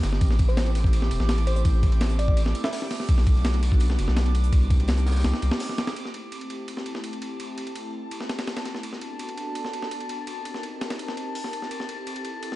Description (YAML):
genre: drum and bass, jungle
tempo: 167 BPM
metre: 4/4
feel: straight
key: A dorian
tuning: A4 = 441 Hz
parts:
  - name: airy breathy pad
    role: sustained chords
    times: 0.0-12.6 s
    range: A3 to Bb4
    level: -34 LUFS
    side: equal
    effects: chorus, vintage 12-bit sampler grit
  - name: saturated sub bass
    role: bass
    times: 0.0-5.5 s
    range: E1 to C2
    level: -22 LUFS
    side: equal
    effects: none
  - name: breakbeat sampler-style drum kit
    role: drums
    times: 0.0-12.6 s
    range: hi-hat, kick drum, ride cymbal, snare drum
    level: -26 LUFS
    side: equal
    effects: high-pass filter on snare, high-pass filter on cymbals, high-pass filter on kick, high-pass filter on hats, high-pass filter on room
  - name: crisp fusion drum kit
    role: drums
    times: 0.0-6.0 s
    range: hi-hat, snare drum, tambourine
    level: -42 LUFS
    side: equal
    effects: high-pass filter on hats, high-pass filter on snare, high-pass filter on perc, high-pass filter on room
  - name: drifting glass-harmonics texture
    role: texture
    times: 0.0-12.6 s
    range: A5 to D6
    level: -37 LUFS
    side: equal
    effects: chorus, built-in reverb
  - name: bell-like FM electric piano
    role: melody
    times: 0.5-2.8 s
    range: C5 to E5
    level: -34 LUFS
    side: equal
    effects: chorus, dub echo
room: light reverb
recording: dark, warm production, vinyl crackle, nothing above 10.5 kHz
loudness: -22 LUFS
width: side -17 dB against mid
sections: 0.0-6.0 A section; 6.0-12.6 B section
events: drop 0.0-6.0; filter sweep on analog synth pad 6.0-12.6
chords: 0.2 Am7; 3.1 Bm7; 4.5 Cm7; 6.0 Am7; 8.8 Bm7; 10.3 Cm7; 11.7 Am7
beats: | 0.21 0.57 0.93 1.29 | 1.65 2.01 2.37 2.73 | 3.09 3.45 3.81 4.17 | 4.53 4.88 5.24 5.60 | 5.96 6.32 6.68 7.04 | 7.40 7.76 8.12 8.48 | 8.84 9.20 9.55 9.91 | 10.27 10.63 10.99 11.35 | 11.71 12.07 12.43